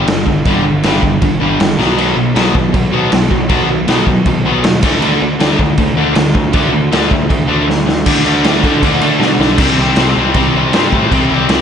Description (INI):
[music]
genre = punk rock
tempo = 158 BPM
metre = 4/4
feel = straight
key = unclear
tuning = A4 = 440 Hz
[part]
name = distorted electric guitar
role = riff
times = 0.0-11.6 s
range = G2 to D4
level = -13 LUFS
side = left 1 dB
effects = distortion
[part]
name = fuzz picked electric bass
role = bass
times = 0.0-11.6 s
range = G1 to D3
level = -18 LUFS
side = equal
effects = overdrive
[part]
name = raw garage drum kit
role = drums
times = 0.1-11.6 s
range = crash cymbal, kick drum, snare drum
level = -14 LUFS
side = equal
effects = none
[sound]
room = moderate recital hall reverb, RT60 1.4 s, small room ambience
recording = big arena sound, nothing above 10.7 kHz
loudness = -10 LUFS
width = side -8 dB against mid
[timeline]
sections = 0.0-8.1 A section; 8.1-9.6 B section; 9.6-11.6 C section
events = drum fill 1.8, 7.7-8.1, 9.2-9.6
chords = 0.0 G5; 1.8 B5; 4.8 D5; 9.6 C5